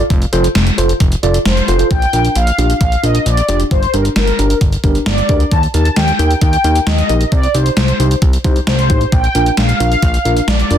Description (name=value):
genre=synth-pop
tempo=133 BPM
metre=4/4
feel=straight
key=Bb major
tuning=A4 = 440 Hz
part: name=fat analog bass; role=bass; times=0.0-10.8 s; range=F1 to Eb2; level=-15 LUFS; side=equal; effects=none
part: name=gated 80s digital drum machine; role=drums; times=0.1-10.8 s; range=hi-hat, kick drum, snare drum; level=-16 LUFS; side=equal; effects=gated reverb, gated reverb snare, overdrive
part: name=mellow tine electric piano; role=accompaniment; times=0.3-10.8 s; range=D4 to D5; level=-19 LUFS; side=right 2 dB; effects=fast stereo tremolo, plate reverb
part: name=mellow synth brass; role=melody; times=1.5-10.8 s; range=Bb4 to A5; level=-17 LUFS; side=left 1 dB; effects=chorus, plate reverb, tape echo
room=moderate small room reverb, RT60 0.5 s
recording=dense, heavily limited modern master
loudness=-11 LUFS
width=side -10 dB against mid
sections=0.1-1.9 A section; 1.9-10.8 B section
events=none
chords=0.1 F; 1.9 Bb; 3.7 Gm; 5.5 Eb; 7.3 Cm; 9.1 Bb